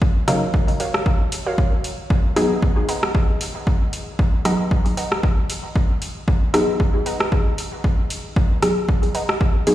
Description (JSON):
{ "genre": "dub techno", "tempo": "115 BPM", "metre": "4/4", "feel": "swing 55% on 16ths", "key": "unclear", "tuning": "A4 = 440 Hz", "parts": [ { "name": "electronic kick drum", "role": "drums", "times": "0.0-9.5 s", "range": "none", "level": "-18 LUFS", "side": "equal", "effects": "overdrive" }, { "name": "warbly dusty pluck", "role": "riff", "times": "0.3-9.3 s", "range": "Gb4 to Bb5", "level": "-30 LUFS", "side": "right 2 dB", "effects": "chorus, sidechain pumping, dub echo" }, { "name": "filtered dub chord stab", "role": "stabs", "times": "0.3-9.7 s", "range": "Db3 to Ab4", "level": "-23 LUFS", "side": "left 1 dB", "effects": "chorus, phaser, sidechain pumping, dub echo" }, { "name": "deep house drum kit", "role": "drums", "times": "0.3-9.7 s", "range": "hi-hat, rim click", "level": "-26 LUFS", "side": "equal", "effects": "dub echo" } ], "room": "light reverb, digital ambience", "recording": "played on a big sound system in a bare room, stone room reverb", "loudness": "-18 LUFS", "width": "side -14 dB against mid", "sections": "0.0-9.7 A section", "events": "none", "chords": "0.0 Ebm7; 2.1 Abm7" }